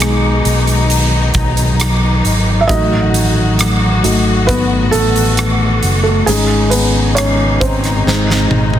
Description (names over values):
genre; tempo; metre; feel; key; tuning
pop ballad; 67 BPM; 4/4; straight; unclear; A4 = 440 Hz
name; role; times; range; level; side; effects
felt-muted upright piano; accompaniment; 0.0-8.8 s; F#3 to E5; -16 LUFS; equal; none
dark studio string section; sustained chords; 0.0-8.8 s; B2 to F#4; -18 LUFS; left 2 dB; none
fingered electric bass; bass; 0.0-8.8 s; F#1 to B1; -15 LUFS; equal; none
huge arena drum kit; drums; 0.0-8.8 s; hi-hat, kick drum, rim click, snare drum, toms; -17 LUFS; right 1 dB; soft clipping on snare
room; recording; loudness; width
light reverb, studio ambience; dense, heavily limited modern master; -11 LUFS; side -10 dB against mid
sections
0.0-8.8 A section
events
felt piano solo 0.0-8.8; drum fill 8.1-8.8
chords
0.0 G#m/B; 2.7 D#dim; 6.3 G#sus4; 8.1 G#